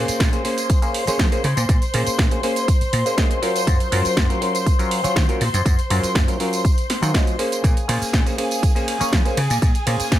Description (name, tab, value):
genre	filtered disco house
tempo	121 BPM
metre	4/4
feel	straight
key	Bb minor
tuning	A4 = 439 Hz
part	auto-wah clav	accompaniment	0.0-10.2 s	Gb3 to Eb5	-24 LUFS	equal	phaser, sidechain pumping
part	muted studio string section	sustained chords	0.0-10.2 s	Ab4 to C6	-26 LUFS	left 2 dB	sidechain pumping
part	vintage slap bass	bass	0.0-10.2 s	Gb2 to F3	-23 LUFS	equal	tube saturation, sidechain pumping
part	house drum kit	drums	0.1-10.2 s	hi-hat, ride cymbal, snare drum, tambourine	-25 LUFS	right 2 dB	sidechain pumping on hats, sidechain pumping on cymbals, sidechain pumping on perc
part	electronic kick drum	drums	0.2-10.2 s	none	-18 LUFS	equal	none
room	light reverb, digital ambience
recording	none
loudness	-17 LUFS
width	side -13 dB against mid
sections	0.0-10.2 A section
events	none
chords	0.0 Bbm9; 3.7 Gbmaj7; 7.6 Bbm9